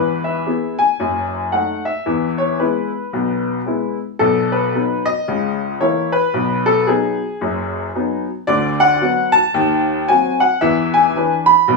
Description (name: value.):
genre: jazz, stride piano.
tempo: 112 BPM.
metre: 4/4.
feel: swing 61% on 8ths.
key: unclear.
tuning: A4 = 439 Hz.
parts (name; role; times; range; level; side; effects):
clear upright piano; solo; 0.0-11.8 s; F#1 to B5; -15 LUFS; left 2 dB; none.
room: moderate small room reverb, RT60 0.5 s.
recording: band playing live in one room, studio ambience.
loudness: -15 LUFS.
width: side -2 dB against mid.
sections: 0.0-11.8 A section.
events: none.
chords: 0.0 E; 1.0 D#dim/F#; 2.1 E; 4.2 B; 5.3 A#dim/C#; 6.3 B; 8.5 Bm/D; 9.5 D#dim7; 10.6 E7.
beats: 0.46 1.00 1.53 | 2.06 2.60 3.13 3.67 | 4.20 4.73 5.27 5.80 | 6.34 6.87 7.41 7.94 | 8.48 9.01 9.55 10.08 | 10.62 11.15 11.69.